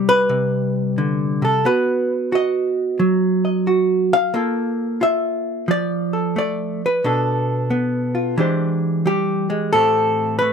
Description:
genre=solo jazz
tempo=89 BPM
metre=4/4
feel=swing 66% on 8ths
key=unclear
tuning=A4 = 440 Hz
part: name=hollow-body jazz guitar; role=solo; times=0.0-10.5 s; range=A2 to F5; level=-17 LUFS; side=equal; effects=none
room=light reverb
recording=minimal, uncompressed stereo recording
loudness=-17 LUFS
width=side -6 dB against mid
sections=0.0-10.5 A section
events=none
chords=0.0 Cadd9; 1.6 B; 4.3 Bbmaj7; 7.0 Bm7b5; 8.4 E7alt; 9.7 Am9

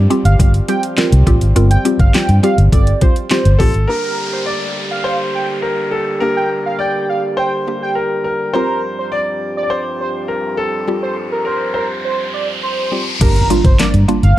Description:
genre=dance-pop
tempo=103 BPM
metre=4/4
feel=straight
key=G minor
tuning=A4 = 440 Hz
part: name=warm French horn section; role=sustained chords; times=0.0-13.2 s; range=G2 to G4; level=-24 LUFS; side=right 2 dB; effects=sidechain pumping
part: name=vintage muted fingered electric bass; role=bass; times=0.0-3.8, 13.2-14.3 s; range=G1 to G2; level=-11 LUFS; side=equal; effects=sidechain pumping
part: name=mallet-like synth pluck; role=accompaniment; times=0.1-14.2 s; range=G3 to Bb4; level=-18 LUFS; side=equal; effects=chorus, phaser, sidechain pumping
part: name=smooth R&B drum kit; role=drums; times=0.1-3.9, 13.2-14.4 s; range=crash cymbal, handclaps, hi-hat, kick drum, snare drum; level=-14 LUFS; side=equal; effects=none
part: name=octave-doubled lead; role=melody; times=0.2-14.4 s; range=Bb4 to G5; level=-22 LUFS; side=right 2 dB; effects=chorus, tape echo
part: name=clear concert grand piano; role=melody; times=3.6-12.9 s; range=A4 to D5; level=-21 LUFS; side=left 2 dB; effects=none
part: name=downlifter, riser and impact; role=sound effects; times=3.9-14.4 s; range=none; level=-24 LUFS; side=equal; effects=none
room=little or no reverb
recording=dark, warm production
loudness=-13 LUFS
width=side -14 dB against mid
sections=0.0-3.9 A section; 3.9-13.2 B section; 13.2-14.4 A section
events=drop 0.0-3.9, 13.2-14.4; riser 10.3-13.2; impact 13.2-14.4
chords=0.0 Fsus2/G; 3.9 Gm; 8.6 Fsus2/G; 13.2 Gm

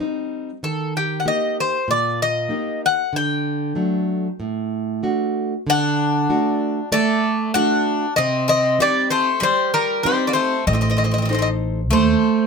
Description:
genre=greek folk, Greek bouzouki band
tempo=96 BPM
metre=4/4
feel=straight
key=unclear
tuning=A4 = 440 Hz
part: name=nylon-string guitar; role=accompaniment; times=0.0-12.5 s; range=A2 to C5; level=-21 LUFS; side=right 3 dB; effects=none
part: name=Greek bouzouki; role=melody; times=0.6-12.5 s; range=G4 to G5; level=-20 LUFS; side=left 2 dB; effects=none
part: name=Greek bouzouki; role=second line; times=5.7-12.5 s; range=G3 to D4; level=-25 LUFS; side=left 4 dB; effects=none
part: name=upright bass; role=bass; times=10.7-12.1 s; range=A1 to Eb2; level=-20 LUFS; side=equal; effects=none
room=moderate small room reverb, RT60 0.5 s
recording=close, detailed microphones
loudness=-18 LUFS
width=side -5 dB against mid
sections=0.0-5.7 A section; 5.7-12.5 B section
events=none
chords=0.0 Cm; 0.6 Eb; 3.1 D; 8.2 Cm; 10.7 Adim

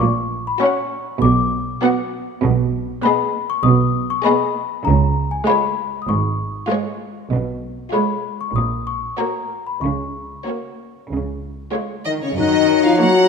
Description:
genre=cinematic, playful, whimsical film cue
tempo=98 BPM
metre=4/4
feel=straight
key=F# major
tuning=A4 = 439 Hz
part: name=celesta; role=melody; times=0.0-11.7 s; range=G#5 to D#6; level=-22 LUFS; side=left 8 dB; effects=none
part: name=warm studio cello section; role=bass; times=0.0-13.3 s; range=G#2 to F#3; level=-22 LUFS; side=right 3 dB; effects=none
part: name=warm studio double bass section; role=bass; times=0.0-12.9 s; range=G#1 to F#2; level=-23 LUFS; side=right 4 dB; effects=none
part: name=rich studio violin section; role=melody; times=0.6-13.3 s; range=C#5 to F#5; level=-29 LUFS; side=left 3 dB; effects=none
part: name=clear studio violin section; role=second line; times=0.6-13.3 s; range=E#4 to F#5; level=-25 LUFS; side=left 4 dB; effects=none
part: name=rich studio viola section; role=accompaniment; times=0.6-13.3 s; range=G#3 to F#4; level=-23 LUFS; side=right 3 dB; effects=none
part: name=mellow French horn section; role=sustained chords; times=12.1-13.3 s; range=C#4 to F#4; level=-15 LUFS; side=left 5 dB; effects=none
part: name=clear oboe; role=second line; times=12.4-13.3 s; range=F#5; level=-29 LUFS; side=right 1 dB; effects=none
part: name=silver concert flute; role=second line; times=12.4-13.3 s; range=A#5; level=-24 LUFS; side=left 3 dB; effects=none
part: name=warm clarinet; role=second line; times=12.4-13.3 s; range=C#5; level=-26 LUFS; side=left 2 dB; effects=none
part: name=dark bassoon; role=accompaniment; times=12.4-13.3 s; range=F#3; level=-23 LUFS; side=equal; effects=none
room=wet scoring stage reverb, RT60 1.9 s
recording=minimal, uncompressed stereo recording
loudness=-17 LUFS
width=side -6 dB against mid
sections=0.0-12.4 A section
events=none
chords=0.0 F#/A#; 1.2 Bm; 4.9 C#; 7.3 C#7/B; 8.6 F#/A#; 9.8 F#/C#; 11.1 C#; 12.4 F#

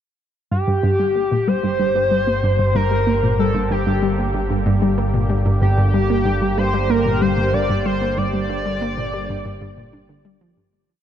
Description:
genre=ambient, sequencer-driven space music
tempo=94 BPM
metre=4/4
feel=straight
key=G minor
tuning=A4 = 438 Hz
part: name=pulse-width lead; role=melody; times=0.5-10.1 s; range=G4 to D5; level=-21 LUFS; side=left 1 dB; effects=chorus, tape echo
part: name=sweeping resonant pad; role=sustained chords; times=0.5-10.7 s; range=D3 to G4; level=-28 LUFS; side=equal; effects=chorus
part: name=analog pluck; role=riff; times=0.5-10.6 s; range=G2 to D4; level=-20 LUFS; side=equal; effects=chorus, tape echo
part: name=analog drone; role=bass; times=1.9-10.7 s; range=G1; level=-23 LUFS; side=equal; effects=chorus
room=moderate huge ambient reverb, RT60 9.0 s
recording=dark, warm production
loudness=-16 LUFS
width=side -9 dB against mid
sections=0.5-10.7 A section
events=fade-in on analog synth pad 0.5-10.7; fade-out 7.3-10.7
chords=0.5 Gm

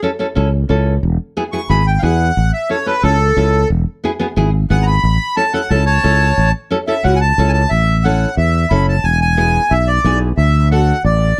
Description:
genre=latin, cumbia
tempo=180 BPM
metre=4/4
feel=straight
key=A major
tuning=A4 = 440 Hz
part: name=nylon-string guitar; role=accompaniment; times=0.0-11.0 s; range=B3 to A4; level=-22 LUFS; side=equal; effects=none
part: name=sustaining fretless electric bass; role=bass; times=0.4-11.3 s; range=E1 to E2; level=-16 LUFS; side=equal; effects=none
part: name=accordion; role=melody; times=1.5-11.4 s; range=A4 to C#6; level=-19 LUFS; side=equal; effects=none
room=little or no reverb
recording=close, detailed microphones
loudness=-15 LUFS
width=mono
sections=0.0-7.7 A section; 7.7-11.4 B section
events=accordion solo 0.0-7.7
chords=0.0 A; 1.0 E; 2.4 A; 3.7 E; 5.0 A; 9.0 E7; 10.4 D

